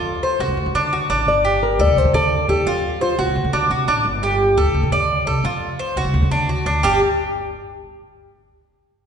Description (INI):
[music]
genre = latin, Cuban son and guajira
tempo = 173 BPM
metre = 4/4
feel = straight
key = unclear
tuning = A4 = 445 Hz
[part]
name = nylon-string guitar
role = melody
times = 0.0-3.7 s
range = F4 to D5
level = -21 LUFS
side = left 2 dB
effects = none
[part]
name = Cuban tres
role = arpeggios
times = 0.0-7.0 s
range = G3 to D5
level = -19 LUFS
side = right 1 dB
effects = none
[part]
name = upright bass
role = bass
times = 0.0-7.0 s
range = G1 to D3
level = -21 LUFS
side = equal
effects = none
[sound]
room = wet concert hall reverb, RT60 2.0 s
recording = recorded in a church or concert hall, nothing above 10.9 kHz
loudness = -16 LUFS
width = side -7 dB against mid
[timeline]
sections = 0.0-4.1 A section; 4.1-6.8 B section; 6.8-8.2 C section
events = none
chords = 0.0 F; 0.6 D; 1.3 G5; 2.0 D5; 2.7 Fsus2; 3.4 D7; 4.1 G5; 4.8 D5; 5.4 F5; 6.1 D; 6.8 G5